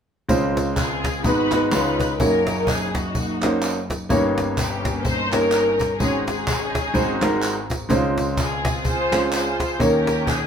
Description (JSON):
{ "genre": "uptempo gospel", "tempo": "126 BPM", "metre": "4/4", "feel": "swing 58% on 8ths", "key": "Db major", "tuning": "A4 = 440 Hz", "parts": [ { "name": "clear concert grand piano", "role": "accompaniment", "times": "0.3-10.5 s", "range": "Gb1 to Db5", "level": "-22 LUFS", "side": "equal", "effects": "none" }, { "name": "cajon", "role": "drums", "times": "0.3-10.4 s", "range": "none", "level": "-26 LUFS", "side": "equal", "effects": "none" }, { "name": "tambourine and handclaps", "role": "percussion", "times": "0.3-10.4 s", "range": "none", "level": "-30 LUFS", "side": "right 2 dB", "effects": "none" }, { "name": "muted studio string section", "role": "melody", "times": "0.8-10.5 s", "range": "Bb3 to C5", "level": "-23 LUFS", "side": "left 1 dB", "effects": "none" } ], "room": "moderate studio reverb, RT60 0.6 s", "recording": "band playing live in one room", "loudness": "-19 LUFS", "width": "side -7 dB against mid", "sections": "0.3-10.5 A section", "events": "none", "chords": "0.3 Dbmaj7; 1.2 Abm7; 1.7 Db9; 2.2 Gb6; 4.1 Eb7/G; 6.0 Ab7sus4; 7.0 Ab7; 7.9 Dbmaj7; 9.8 Eb7", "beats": "| 0.29 0.77 1.24 1.72 | 2.19 2.67 3.15 3.62 | 4.10 4.57 5.05 5.53 | 6.00 6.48 6.95 7.43 | 7.90 8.38 8.85 9.33 | 9.80 10.28" }